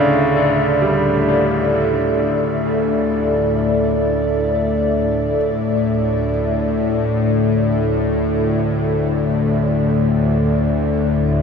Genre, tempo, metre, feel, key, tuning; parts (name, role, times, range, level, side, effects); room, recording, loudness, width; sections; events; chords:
dark ambient drone; free time; A4 = 439 Hz
dark analog pad; sustained chords; 0.0-11.4 s; A4 to E5; -19 LUFS; right 1 dB; chorus, shimmer reverb
bright grand piano; arpeggios; 0.0-11.4 s; C#3 to G3; -21 LUFS; equal; ping-pong delay, shimmer reverb
bowed-like drone; drone; 0.0-11.4 s; D2 to A2; -18 LUFS; left 2 dB; built-in reverb
wet cathedral reverb, RT60 5.7 s; in a vast, echoing space; -15 LUFS; side -6 dB against mid
0.0-11.4 A section
fade-in on synth drone 0.0-11.4
0.0 D5